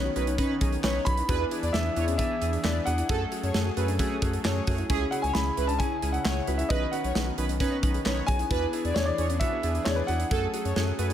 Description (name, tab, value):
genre	synth-pop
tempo	133 BPM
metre	4/4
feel	straight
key	F# minor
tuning	A4 = 440 Hz
part	warm concert grand piano	melody	0.0-11.1 s	B4 to B5	-32 LUFS	left 2 dB	none
part	warm analog keys	accompaniment	0.0-11.1 s	A3 to B4	-33 LUFS	right 2 dB	chorus
part	brassy analog pad	sustained chords	0.0-11.1 s	C#3 to A4	-36 LUFS	left 1 dB	chorus
part	soft round pluck	arpeggios	0.0-11.1 s	B3 to A4	-37 LUFS	left 5 dB	chorus, tape echo
part	round analog bass	bass	0.0-11.1 s	B1 to F#2	-29 LUFS	equal	none
part	analog synth brass	second line	0.2-11.1 s	G#4 to D5	-34 LUFS	right 2 dB	chorus, tape echo
part	modern studio drum kit	drums	0.2-11.1 s	handclaps, hi-hat, kick drum, snare drum	-30 LUFS	equal	none
room	light reverb, small room ambience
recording	none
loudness	-24 LUFS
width	side -10 dB against mid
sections	0.0-11.1 A section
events	none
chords	0.0 Badd9; 1.3 E7; 3.1 F#madd9; 4.9 C#m; 6.7 Badd9; 8.5 E7; 10.3 F#madd9